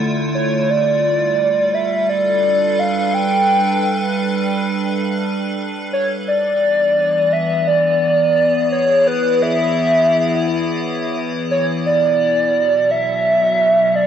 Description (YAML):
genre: IDM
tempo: 86 BPM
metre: 4/4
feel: straight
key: unclear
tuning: A4 = 440 Hz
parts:
  - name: icy glass pad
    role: sustained chords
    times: 0.0-14.1 s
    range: B2 to B4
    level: -20 LUFS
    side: right 1 dB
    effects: chorus, built-in reverb
  - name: warbly nostalgic lead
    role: melody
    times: 0.3-14.1 s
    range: B4 to G5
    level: -16 LUFS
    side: equal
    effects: wide subtle chorus, analog delay
room: moderate lush hall reverb, RT60 2.4 s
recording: cassette tape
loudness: -14 LUFS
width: side -9 dB against mid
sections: 0.0-14.1 A section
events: none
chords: 0.0 Dmadd9; 0.7 G7; 6.3 E7; 11.9 Bm